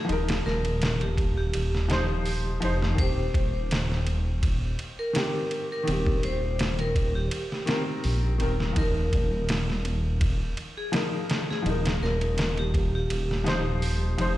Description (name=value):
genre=trip hop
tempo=83 BPM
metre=4/4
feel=swing 54% on 16ths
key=unclear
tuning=A4 = 440 Hz
part: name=vibraphone with hard mallets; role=melody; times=0.0-14.4 s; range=G4 to C5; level=-32 LUFS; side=equal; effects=tape echo
part: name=felt-muted upright piano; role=accompaniment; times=0.0-14.4 s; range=Eb3 to C5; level=-32 LUFS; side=left 1 dB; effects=tremolo, vintage 12-bit sampler grit
part: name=dark detuned saw bass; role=bass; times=0.1-14.4 s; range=Eb1 to Bb1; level=-27 LUFS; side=equal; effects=none
part: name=trip hop sampler-style drum kit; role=drums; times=0.1-14.4 s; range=hi-hat, kick drum, ride cymbal, snare drum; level=-29 LUFS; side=equal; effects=none
room=digital ambience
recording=played on a big sound system in a bare room, stone room reverb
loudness=-24 LUFS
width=side -15 dB against mid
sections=0.0-14.4 A section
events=none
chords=0.0 Ebsus2; 3.0 Cm/Eb; 8.8 Ebsus2